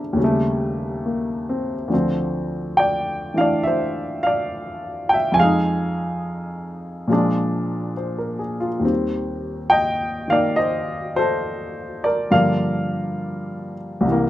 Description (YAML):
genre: solo jazz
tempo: 69 BPM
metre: 4/4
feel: swing 69% on 8ths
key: unclear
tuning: A4 = 440 Hz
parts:
  - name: dark baby grand piano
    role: solo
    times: 0.0-14.3 s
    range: C2 to Ab5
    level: -19 LUFS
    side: equal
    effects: none
room: light reverb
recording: rough home demo mix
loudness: -19 LUFS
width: side -14 dB against mid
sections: 0.0-14.3 A section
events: none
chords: 0.2 Eb7#11; 1.9 Dm7; 5.4 Fm7; 7.1 Bb7; 8.8 Eb6; 12.3 Gm7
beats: 0.17 1.03 | 1.90 2.77 3.63 4.50 | 5.36 6.23 7.10 7.96 | 8.83 9.70 10.57 11.44 | 12.31 13.18 14.04